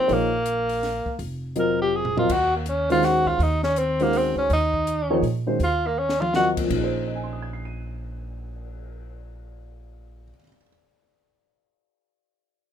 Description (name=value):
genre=modal jazz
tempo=163 BPM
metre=3/4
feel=swing 64% on 8ths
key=Bb minor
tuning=A4 = 440 Hz
part: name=clear tenor saxophone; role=melody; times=0.0-6.5 s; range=Bb3 to Bb4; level=-22 LUFS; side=equal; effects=none
part: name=dark baby grand piano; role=accompaniment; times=0.0-10.7 s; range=Bb2 to Eb7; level=-25 LUFS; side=left 1 dB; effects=none
part: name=upright bass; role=bass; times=0.1-10.3 s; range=F1 to Bb2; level=-29 LUFS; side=equal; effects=none
part: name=compact cocktail drum kit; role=drums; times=0.1-8.8 s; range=crash cymbal, cymbal swell, hi-hat, kick drum, snare drum, toms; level=-34 LUFS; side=left 1 dB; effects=none
room=moderate studio reverb, RT60 0.5 s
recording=minimal, uncompressed stereo recording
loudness=-20 LUFS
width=side -9 dB against mid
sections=0.0-6.7 A section; 6.7-8.9 B section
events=tenor saxophone solo 0.0-6.7; drum fill 1.9-2.3, 6.0-6.3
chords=0.0 Bbsus4; 2.3 Ebm11; 6.7 Bbm11